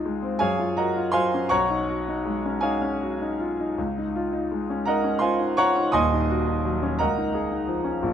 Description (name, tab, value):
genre	classical, impressionist solo piano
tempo	52-58 BPM (dotted quarters)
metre	6/8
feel	rubato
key	Db major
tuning	A4 = 441 Hz
part	clear concert grand piano	solo	0.0-8.1 s	Eb1 to Eb6	-22 LUFS	equal	none
room	moderate recital hall reverb, RT60 1.6 s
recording	none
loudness	-22 LUFS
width	side -9 dB against mid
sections	0.0-8.1 A section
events	none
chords	0.4 Gbmaj7; 1.5 Cb69; 3.8 Dbadd9; 5.9 Ebm7; 7.0 Db69